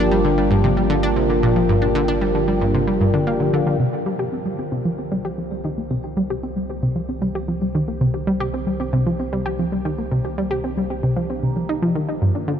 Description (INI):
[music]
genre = ambient, sequencer-driven space music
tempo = 114 BPM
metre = 4/4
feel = straight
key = unclear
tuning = A4 = 440 Hz
[part]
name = phased analog pad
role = sustained chords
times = 0.0-12.6 s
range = Eb3 to G4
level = -26 LUFS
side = equal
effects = phaser, chorus
[part]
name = vibraphone with soft mallets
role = arpeggios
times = 0.0-12.6 s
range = F4 to Bb5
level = -27 LUFS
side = moving between left 2 dB and right 7 dB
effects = auto-pan, analog delay
[part]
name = analog pluck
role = riff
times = 0.0-12.5 s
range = G2 to G4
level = -20 LUFS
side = equal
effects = chorus, analog delay
[part]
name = round analog bass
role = bass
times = 0.0-12.6 s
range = G1 to C2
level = -29 LUFS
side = equal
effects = none
[part]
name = pulsing gated texture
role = texture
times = 0.0-3.8 s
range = G4 to G5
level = -38 LUFS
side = equal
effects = none
[sound]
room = moderate huge ambient reverb, RT60 9.2 s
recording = none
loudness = -18 LUFS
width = side -8 dB against mid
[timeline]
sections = 0.0-3.8 A section; 3.8-12.6 B section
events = fade-in on vibraphone 3.8-12.6; fade-in on analog synth pad 3.8-12.6; fade-in on analog synth bass 3.8-12.6; filter sweep on synth arpeggio sound 3.8-12.6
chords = 0.0 Gm7; 3.8 Cm7